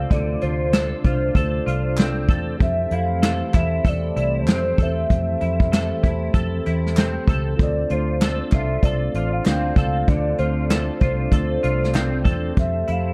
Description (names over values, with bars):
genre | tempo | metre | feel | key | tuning
indie pop, bedroom pop | 96 BPM | 4/4 | swing 60% on 16ths | unclear | A4 = 440 Hz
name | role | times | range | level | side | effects
warbly nostalgic lead | melody | 0.0-13.1 s | C5 to F5 | -29 LUFS | equal | lush chorus, tape echo
mellow tonewheel organ | accompaniment | 0.0-13.1 s | F4 to Eb5 | -33 LUFS | equal | slow rotary speaker
semi-hollow electric guitar | accompaniment | 0.0-13.1 s | D3 to A4 | -33 LUFS | equal | ensemble chorus, warbly pitch drift
warm analog pad | sustained chords | 0.0-13.1 s | C3 to A4 | -33 LUFS | equal | chorus
vintage muted fingered electric bass | bass | 0.0-13.1 s | A1 to F2 | -26 LUFS | equal | none
soft brush drum kit | drums | 0.1-13.1 s | hi-hat, kick drum, snare drum | -22 LUFS | equal | none
group handclap | percussion | 0.7-12.1 s | none | -40 LUFS | equal | none
room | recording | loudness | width
light reverb, small room ambience | dark, warm production | -21 LUFS | mono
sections
0.0-13.1 A section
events
none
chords
0.0 Dm7; 2.6 Fmaj7; 7.6 Dm7; 12.6 Fmaj7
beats
| 0.11 0.73 1.35 1.98 | 2.60 3.23 3.85 4.47 | 5.10 5.72 6.34 6.97 | 7.59 8.21 8.84 9.46 | 10.08 10.71 11.33 11.95 | 12.57